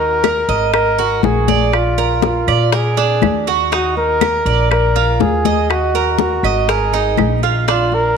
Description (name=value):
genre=latin, Cuban son and guajira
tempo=121 BPM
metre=4/4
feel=straight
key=Eb harmonic minor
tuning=A4 = 440 Hz
part: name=trumpet with bucket mute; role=melody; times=0.0-8.2 s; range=F4 to Bb4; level=-18 LUFS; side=equal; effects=none
part: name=Cuban tres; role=arpeggios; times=0.0-8.2 s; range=D4 to Eb5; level=-18 LUFS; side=right 8 dB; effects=none
part: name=upright bass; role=bass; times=0.0-8.2 s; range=Ab1 to Bb2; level=-19 LUFS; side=equal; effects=none
part: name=bongos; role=percussion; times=0.2-7.9 s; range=none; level=-23 LUFS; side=left 12 dB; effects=none
part: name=claves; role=percussion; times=0.2-7.4 s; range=none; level=-28 LUFS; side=right 13 dB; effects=none
part: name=congas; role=percussion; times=0.2-8.2 s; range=none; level=-21 LUFS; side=left 11 dB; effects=none
room=moderate echo chamber reverb, RT60 2.3 s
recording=1960s-style stereo with parts hard left and right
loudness=-13 LUFS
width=side -6 dB against mid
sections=0.0-8.2 A section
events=none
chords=0.0 Eb5; 0.7 Ab5; 1.7 Bb; 3.7 Eb5; 4.7 Bb; 5.7 Ebm; 6.7 Absus2